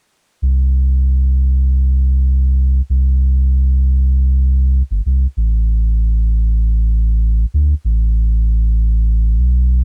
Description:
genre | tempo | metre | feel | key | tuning
folktronica | 97 BPM | 4/4 | straight | unclear | A4 = 440 Hz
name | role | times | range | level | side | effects
warm sub bass | bass | 0.4-9.8 s | G1 to D2 | -15 LUFS | equal | tube saturation
room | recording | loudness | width
little or no reverb | dark, warm production | -15 LUFS | mono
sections
0.4-9.8 A section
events
filter sweep on sub bass 0.4-9.8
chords
none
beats
| 0.42 1.04 1.66 2.28 | 2.90 3.51 4.13 4.75 | 5.37 5.99 6.61 7.22 | 7.84 8.46 9.08 9.70

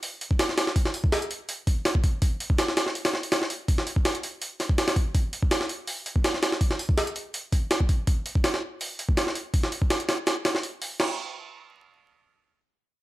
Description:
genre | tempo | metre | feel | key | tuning
drum and bass | 164 BPM | 4/4 | straight | none | none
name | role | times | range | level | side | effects
jungle sampler-style drum kit | drums | 0.0-11.1 s | crash cymbal, hi-hat, kick drum, snare drum | -24 LUFS | equal | overdrive, small room reverb
room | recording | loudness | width
light reverb | vinyl crackle | -24 LUFS | side -17 dB against mid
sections
0.0-11.0 A section; 11.0-13.0 B section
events
none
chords
none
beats
0.02 0.39 | 0.76 1.12 1.49 1.85 | 2.22 2.58 2.95 3.32 | 3.68 4.05 4.42 4.78 | 5.15 5.51 5.88 6.24 | 6.61 6.98 7.34 7.71 | 8.07 8.44 8.80 9.17 | 9.54 9.90 10.27 10.63 | 11.00

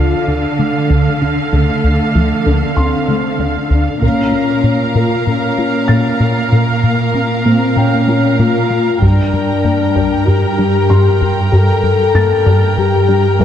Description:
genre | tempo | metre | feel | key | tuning
cinematic, hybrid orchestral and electronic film score | 96 BPM | 4/4 | straight | unclear | A4 = 440 Hz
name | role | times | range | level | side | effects
warm symphonic violin section | second line | 0.0-13.4 s | F5 to Bb5 | -24 LUFS | left 2 dB | none
clear symphonic viola section | accompaniment | 0.0-13.4 s | A4 to F5 | -21 LUFS | right 3 dB | none
dark French horn section | sustained chords | 0.0-13.4 s | A3 to A4 | -17 LUFS | left 5 dB | none
resonant blip pluck | arpeggios | 0.0-13.4 s | D3 to Bb4 | -22 LUFS | right 1 dB | phaser, tape echo
plucky analog bass | riff | 0.0-13.4 s | D2 to Bb3 | -16 LUFS | left 1 dB | none
rich symphonic cello section | bass | 0.0-13.4 s | G2 to D3 | -18 LUFS | right 4 dB | none
felt-muted upright piano | texture | 0.0-13.4 s | Bb4 to A6 | -28 LUFS | equal | tape echo
taiko ensemble | drums | 4.0-5.2, 9.0-10.3 s | none | -22 LUFS | right 1 dB | none
room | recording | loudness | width
moderate scoring stage reverb, RT60 1.8 s | dark, warm production | -11 LUFS | side -9 dB against mid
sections
0.0-13.4 A section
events
none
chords
0.0 Dm; 4.0 Bbm; 9.0 Gm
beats
0.27 0.90 | 1.52 2.15 2.77 3.40 | 4.02 4.65 5.27 5.90 | 6.52 7.15 7.77 8.40 | 9.02 9.65 10.27 10.90 | 11.52 12.15 12.77 13.40

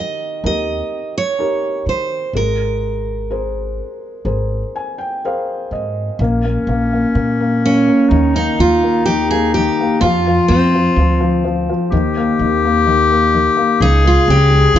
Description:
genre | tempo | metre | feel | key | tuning
acoustic folk-pop ballad | 63 BPM | 4/4 | straight | Bb dorian | A4 = 440 Hz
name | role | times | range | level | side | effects
picked steel-string acoustic guitar | melody | 0.0-14.8 s | C4 to Eb5 | -18 LUFS | right 4 dB | none
felt-muted upright piano | accompaniment | 0.0-14.8 s | Db3 to Ab5 | -19 LUFS | left 3 dB | none
upright bass | bass | 0.4-14.8 s | Ab1 to Eb3 | -18 LUFS | equal | none
clear clarinet | second line | 6.2-14.8 s | Db4 to Ab4 | -17 LUFS | left 5 dB | none
room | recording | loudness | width
moderate large studio reverb, RT60 0.9 s | nothing above 7.6 kHz | -13 LUFS | side -11 dB against mid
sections
0.0-6.2 A section; 6.2-14.8 B section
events
none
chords
0.0 Eb; 2.3 Abadd9; 6.2 Bbm; 8.1 Eb5; 10.0 F5; 11.9 Eb; 13.8 Db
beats
0.44 1.39 | 2.34 3.30 4.25 5.22 | 6.19 7.15 8.11 9.06 | 10.02 10.97 11.92 12.87 | 13.81 14.75

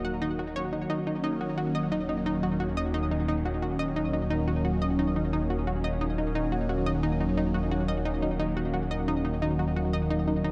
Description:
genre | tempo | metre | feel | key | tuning
ambient, sequencer-driven space music | 88 BPM | 4/4 | straight | Eb minor | A4 = 438 Hz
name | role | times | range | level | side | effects
phased analog pad | sustained chords | 0.0-10.5 s | Eb3 to Gb4 | -32 LUFS | equal | phaser, chorus
analog pluck | riff | 0.0-10.5 s | Eb4 to Gb5 | -34 LUFS | equal | chorus, analog delay
fat analog bass | bass | 0.0-10.5 s | Eb1 | -35 LUFS | equal | none
room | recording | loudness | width
wet huge ambient reverb, RT60 9.1 s | dark, warm production | -28 LUFS | mono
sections
0.0-10.5 A section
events
none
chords
0.0 Ebm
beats
0.22 | 0.90 1.58 2.26 2.94 | 3.63 4.31 4.99 5.67 | 6.35 7.04 7.72 8.40 | 9.08 9.76 10.44

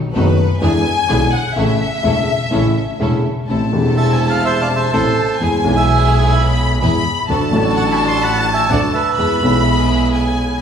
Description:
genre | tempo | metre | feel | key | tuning
tango | 126 BPM | 4/4 | rubato | A major, A harmonic minor from 3.5 s | A4 = 441 Hz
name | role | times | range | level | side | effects
warm studio violin section | second line | 0.1-10.6 s | B4 to B5 | -20 LUFS | left 3 dB | none
rich chamber string section | stabs | 0.1-10.6 s | B3 to A4 | -25 LUFS | right 2 dB | none
rich double bass | bass | 0.1-10.6 s | E1 to E2 | -19 LUFS | right 1 dB | none
dark upright piano | accompaniment | 0.2-10.6 s | E1 to A4 | -17 LUFS | left 1 dB | none
bandoneon | melody | 4.0-9.6 s | A4 to C6 | -19 LUFS | right 4 dB | none
room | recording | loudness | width
wet concert hall reverb, RT60 2.3 s | recorded in a church or concert hall, small room reverb | -13 LUFS | side -7 dB against mid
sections
0.0-3.5 A section; 3.5-10.6 B section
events
violin section solo 0.0-3.5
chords
0.0 B7; 0.6 E7; 1.6 A; 3.5 Am; 5.4 E; 7.3 D; 9.2 E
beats
0.15 0.62 1.09 | 1.56 2.04 2.52 3.00 | 3.49 3.97 4.45 4.93 | 5.40 5.88 6.35 6.82 | 7.29 7.76 8.23 8.71 | 9.18 9.66 10.14

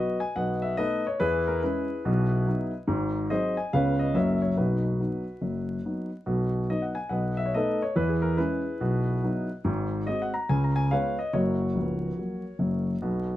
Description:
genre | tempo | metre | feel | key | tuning
jazz, stride piano | 142 BPM | 4/4 | swing 64% on 8ths | B major | A4 = 440 Hz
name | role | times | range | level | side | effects
warm concert grand piano | solo | 0.0-13.4 s | C#1 to A#5 | -25 LUFS | equal | none
room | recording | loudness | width
moderate studio reverb, RT60 0.6 s | vinyl crackle | -25 LUFS | side -14 dB against mid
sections
0.0-6.3 A section; 6.3-13.4 A section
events
none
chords
0.3 B7; 1.2 E6; 2.0 B; 2.9 G#7; 3.7 C#7; 4.1 F#7; 4.6 B; 7.1 B7; 8.0 E6; 8.8 B; 9.6 G#7; 10.5 C#7; 11.3 F#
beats
0.34 0.76 | 1.19 1.61 2.03 2.46 | 2.88 3.30 3.73 4.15 | 4.57 4.99 5.42 5.84 | 6.26 6.68 7.11 7.53 | 7.95 8.38 8.80 9.22 | 9.64 10.07 10.49 10.91 | 11.34 11.76 12.18 12.61 | 13.03

